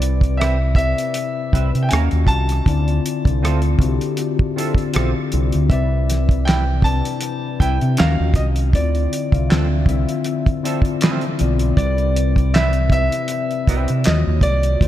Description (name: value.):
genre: R&B, neo-soul.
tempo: 79 BPM.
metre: 4/4.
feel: swing 54% on 16ths.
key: C major.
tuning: A4 = 439 Hz.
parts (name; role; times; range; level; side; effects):
clear grand piano; melody; 0.0-14.9 s; D5 to A5; -25 LUFS; right 1 dB; tape echo.
mellow tine electric piano; accompaniment; 0.0-14.9 s; C3 to F5; -23 LUFS; left 7 dB; ensemble chorus.
deep dub fingered electric bass; bass; 0.0-14.9 s; B1 to C3; -18 LUFS; right 1 dB; none.
cloth-damped thuddy drum kit; drums; 0.0-14.9 s; handclaps, hi-hat, kick drum, rim click, snare drum; -19 LUFS; right 1 dB; none.
semi-hollow electric guitar; second line; 0.4-13.9 s; C4 to F5; -31 LUFS; right 6 dB; lush chorus.
room: moderate church reverb, RT60 3.3 s.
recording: dreamy mix soaked in reverb.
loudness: -16 LUFS.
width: side -12 dB against mid.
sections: 0.0-14.9 A section.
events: none.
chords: 0.0 Cmaj7; 1.9 Ebm9; 2.7 Dm9; 5.7 Cmaj7; 8.0 Ebm9; 8.7 Dm9; 11.8 Cmaj7; 14.1 Ebm9.